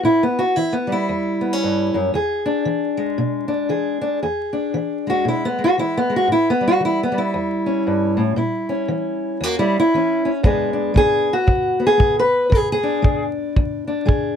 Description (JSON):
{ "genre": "acoustic country blues, solo or duo", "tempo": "115 BPM", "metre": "4/4", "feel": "swing 60% on 8ths", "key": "E mixolydian", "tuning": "A4 = 440 Hz", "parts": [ { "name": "fingerpicked steel-string acoustic guitar", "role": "melody", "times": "0.0-14.4 s", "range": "E2 to B4", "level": "-17 LUFS", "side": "equal", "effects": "none" }, { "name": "kick drum", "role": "drums", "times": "10.4-14.2 s", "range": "none", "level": "-18 LUFS", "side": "equal", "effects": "none" } ], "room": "light reverb", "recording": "close, detailed microphones, vinyl crackle", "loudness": "-17 LUFS", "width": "side -8 dB against mid", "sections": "0.0-14.4 A section", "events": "steel-string acoustic guitar solo 0.0-14.4", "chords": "0.0 A7; 2.1 E7; 6.3 A7; 8.4 A#dim7; 10.5 E7" }